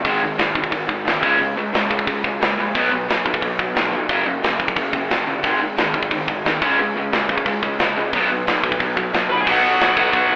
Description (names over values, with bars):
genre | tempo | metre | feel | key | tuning
punk rock | 178 BPM | 4/4 | straight | B major | A4 = 440 Hz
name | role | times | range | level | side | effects
distorted electric guitar | riff | 0.0-10.4 s | F#2 to C#4 | -22 LUFS | equal | distortion
sludgy distorted guitar | riff | 0.0-10.4 s | F#2 to C#4 | -25 LUFS | equal | overdrive
fuzz picked electric bass | bass | 0.0-10.4 s | E#1 to C#2 | -25 LUFS | equal | overdrive
tight metal drum kit | drums | 0.0-10.2 s | crash cymbal, hi-hat, kick drum, snare drum | -20 LUFS | equal | none
dark smooth lead guitar | melody | 9.3-10.4 s | F#4 to B5 | -18 LUFS | equal | overdrive
room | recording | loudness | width
light reverb | band playing live in one room, telephone sound | -16 LUFS | side -35 dB against mid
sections
0.0-9.5 A section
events
none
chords
0.0 G#5; 1.2 C#5; 2.7 B5; 4.1 F#5; 5.4 G#5; 6.6 C#5; 8.1 B5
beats
| 0.04 0.38 0.72 1.05 | 1.39 1.73 2.06 2.40 | 2.74 3.08 3.41 3.75 | 4.09 4.42 4.76 5.10 | 5.43 5.77 6.11 6.44 | 6.78 7.12 7.45 7.79 | 8.12 8.46 8.79 9.13 | 9.46 9.80 10.13